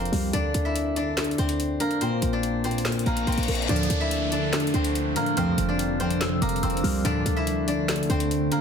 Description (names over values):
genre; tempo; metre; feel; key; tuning
hip hop, trap; 143 BPM; 4/4; half-time; D minor; A4 = 440 Hz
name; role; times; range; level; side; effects
steel-string zither; melody; 0.0-8.6 s; Bb3 to E5; -28 LUFS; left 1 dB; ping-pong delay
dark concert grand piano; accompaniment; 0.0-8.6 s; F2 to D4; -28 LUFS; left 1 dB; none
short 808-style bass; bass; 0.0-8.5 s; F1 to A2; -29 LUFS; equal; none
trap drum kit; drums; 0.1-8.6 s; handclaps, hi-hat, snare drum; -31 LUFS; left 1 dB; none
reverse cymbal and downlifter; sound effects; 3.0-7.0 s; none; -34 LUFS; left 2 dB; none
glassy FM pad; sustained chords; 3.7-8.6 s; C3 to D4; -29 LUFS; equal; ensemble chorus, built-in reverb
chorused polysynth; stabs; 3.7-7.2 s; C2 to F3; -30 LUFS; right 1 dB; none
soft synth bell; second line; 5.4-7.0 s; D6 to F6; -36 LUFS; equal; chorus, ping-pong delay
room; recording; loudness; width
light reverb, digital ambience; dense, heavily limited modern master; -22 LUFS; side -7 dB against mid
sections
0.0-3.7 A section; 3.7-8.6 B section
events
reverse cymbal 3.0-3.7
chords
0.3 C9/D; 2.0 Bb; 3.7 Dm; 5.4 Fsus2; 7.0 Dm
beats
| 0.34 0.75 1.17 1.59 | 2.01 2.43 2.85 3.27 | 3.69 4.11 4.53 4.95 | 5.37 5.79 6.21 6.63 | 7.05 7.47 7.89 8.31